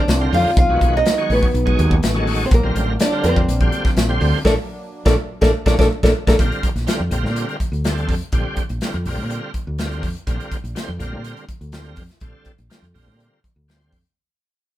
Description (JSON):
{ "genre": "electric jazz fusion", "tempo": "124 BPM", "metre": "4/4", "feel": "straight", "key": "Bb major", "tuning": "A4 = 440 Hz", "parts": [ { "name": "nylon-string guitar", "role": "melody", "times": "0.0-6.4 s", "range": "A4 to F5", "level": "-20 LUFS", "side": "equal", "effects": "none" }, { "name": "archtop guitar, miked and amplified", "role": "second line", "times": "0.0-6.4 s", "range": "A3 to F4", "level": "-26 LUFS", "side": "left 1 dB", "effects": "none" }, { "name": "bright tonewheel organ", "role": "accompaniment", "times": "0.0-14.0 s", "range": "D3 to C#5", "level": "-26 LUFS", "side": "right 1 dB", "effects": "slow rotary speaker, overdrive, chorus vibrato" }, { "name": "warm analog pad", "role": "sustained chords", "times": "0.0-6.4 s", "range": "C3 to D4", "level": "-32 LUFS", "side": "right 1 dB", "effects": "none" }, { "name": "woody fretless electric bass", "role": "bass", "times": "0.1-14.0 s", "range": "A1 to Bb2", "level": "-21 LUFS", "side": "equal", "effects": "none" }, { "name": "modern studio drum kit", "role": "drums", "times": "0.1-14.2 s", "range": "hi-hat, kick drum, snare drum", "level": "-20 LUFS", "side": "equal", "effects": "none" } ], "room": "light reverb", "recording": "band playing live in one room", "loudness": "-16 LUFS", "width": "side -14 dB against mid", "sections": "0.0-6.4 A section; 6.4-14.2 B section", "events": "band accent 4.5-6.4; tonewheel organ fill 5.4-6.4; drum fill 5.9-6.4; fade-out 6.4-14.2", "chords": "0.0 Cm9; 0.6 B9; 2.5 Bbmaj9" }